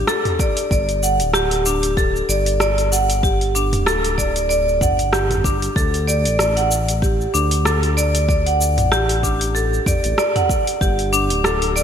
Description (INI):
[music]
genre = organic downtempo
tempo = 95 BPM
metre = 4/4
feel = swing 56% on 16ths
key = unclear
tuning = A4 = 440 Hz
[part]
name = marimba with hard mallets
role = arpeggios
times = 0.0-11.8 s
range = D4 to F#5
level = -19 LUFS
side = equal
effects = ping-pong delay
[part]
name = smooth synth bass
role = bass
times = 0.0-11.8 s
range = D1 to D2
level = -21 LUFS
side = equal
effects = none
[part]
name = deep house drum kit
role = drums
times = 0.1-11.8 s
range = cabasa, hi-hat, rim click, toms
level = -23 LUFS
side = equal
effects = gated reverb
[part]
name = electronic kick drum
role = drums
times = 0.4-11.0 s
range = none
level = -21 LUFS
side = equal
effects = none
[sound]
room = moderate lush hall reverb, RT60 2.9 s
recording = bright 1980s-style digital production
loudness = -16 LUFS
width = side -8 dB against mid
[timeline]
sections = 0.0-11.8 A section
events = none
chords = 0.0 D5; 0.7 G5; 5.8 Dsus4; 10.8 G5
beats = 0.08 | 0.71 1.34 1.97 2.60 | 3.23 3.87 4.50 5.13 | 5.76 6.39 7.03 7.66 | 8.29 8.92 9.55 10.18 | 10.81 11.45